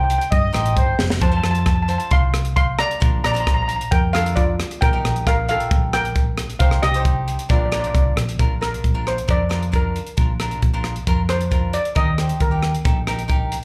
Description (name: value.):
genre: calypso.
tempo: 134 BPM.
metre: 4/4.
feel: straight.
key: Bb major.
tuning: A4 = 440 Hz.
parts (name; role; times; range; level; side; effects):
steel pan; melody; 0.0-13.5 s; F4 to C6; -25 LUFS; equal; slapback echo.
cavaquinho; accompaniment; 0.0-13.6 s; D4 to C5; -30 LUFS; equal; slapback echo.
hollow-body short-scale fingered electric bass; bass; 0.0-13.5 s; F1 to G2; -24 LUFS; equal; none.
crisp fusion drum kit; drums; 0.1-13.6 s; hi-hat, kick drum, rim click, snare drum; -23 LUFS; equal; none.
warm horn section; second line; 0.3-1.1 s; C5 to Eb5; -26 LUFS; equal; slapback echo.
room: light reverb.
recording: live gig heard through the venue's PA, club reverb.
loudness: -19 LUFS.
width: mono.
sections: 0.0-8.4 A section; 8.4-13.6 B section.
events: drum fill 1.0; steel pan solo 8.4-13.6.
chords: 0.0 Cm; 1.2 F; 3.0 Bb; 4.8 Ebadd9/Bb; 6.6 Cm; 7.5 Bb; 12.0 Eb.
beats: 0.32 0.77 | 1.22 1.67 2.12 2.57 | 3.02 3.47 3.92 4.37 | 4.81 5.26 5.71 6.16 | 6.61 7.05 7.50 7.95 | 8.39 8.84 9.29 9.73 | 10.18 10.62 11.07 11.52 | 11.96 12.41 12.85 13.29.